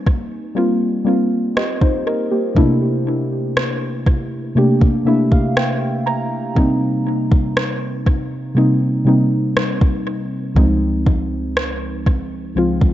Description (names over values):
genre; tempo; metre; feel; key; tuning
contemporary R&B; 60 BPM; 4/4; straight; unclear; A4 = 440 Hz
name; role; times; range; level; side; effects
muted felt-like synth keys; accompaniment; 0.0-12.9 s; Db2 to Bb5; -17 LUFS; equal; chorus, tape echo
smooth R&B drum kit; drums; 0.1-12.9 s; kick drum, rim click; -17 LUFS; equal; tape echo
room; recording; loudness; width
light reverb; echo-heavy mix, nothing above 7.8 kHz; -15 LUFS; side -13 dB against mid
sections
0.0-12.9 A section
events
synth keys fill 4.6-6.6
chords
0.0 Cm7; 2.6 C13; 6.6 Cm7; 10.6 Dbmaj9